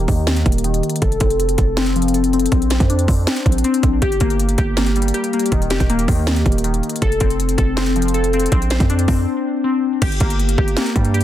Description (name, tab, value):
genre	hip hop, trap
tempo	160 BPM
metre	4/4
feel	half-time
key	G minor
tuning	A4 = 438 Hz
part	glassy digital keys	arpeggios	0.0-11.2 s	Eb3 to C5	-19 LUFS	left 3 dB	chorus, low-pass filter, ping-pong delay
part	hard-hitting 808-style bass	bass	0.0-11.2 s	Eb1 to G2	-19 LUFS	right 1 dB	none
part	trap drum kit	drums	0.1-11.2 s	crash cymbal, hi-hat, kick drum, snare drum	-19 LUFS	right 1 dB	none
room	little or no reverb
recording	dense, heavily limited modern master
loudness	-15 LUFS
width	side -12 dB against mid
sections	0.0-10.0 A section; 10.0-11.2 B section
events	filter sweep on synth keys 0.0-4.0; break 9.3-10.0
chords	0.0 Eb; 1.0 F; 2.5 Bbadd9; 4.0 Gm; 5.5 Eb; 7.0 F; 8.5 Bbadd9; 10.0 Gm